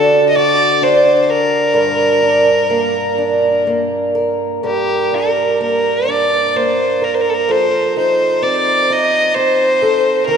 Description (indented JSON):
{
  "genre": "celtic folk, Celtic slow air",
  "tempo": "63 BPM",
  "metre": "3/4",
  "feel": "uneven beats, rubato",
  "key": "G minor",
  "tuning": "A4 = 440 Hz",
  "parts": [
    { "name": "clear fiddle", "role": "melody", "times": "0.0-10.4 s", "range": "G4 to Eb5", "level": "-15 LUFS", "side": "equal", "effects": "none" },
    { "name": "fingerpicked acoustic archtop guitar", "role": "accompaniment", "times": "0.0-10.4 s", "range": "G2 to Bb4", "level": "-15 LUFS", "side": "right 1 dB", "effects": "none" }
  ],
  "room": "wet cathedral reverb, RT60 4.5 s",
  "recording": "recorded in a church or concert hall, nothing above 10.5 kHz",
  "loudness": "-12 LUFS",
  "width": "side -7 dB against mid",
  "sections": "0.0-4.6 A section; 4.6-10.4 A section",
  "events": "none",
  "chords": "0.0 D; 1.8 Gm; 7.5 F7"
}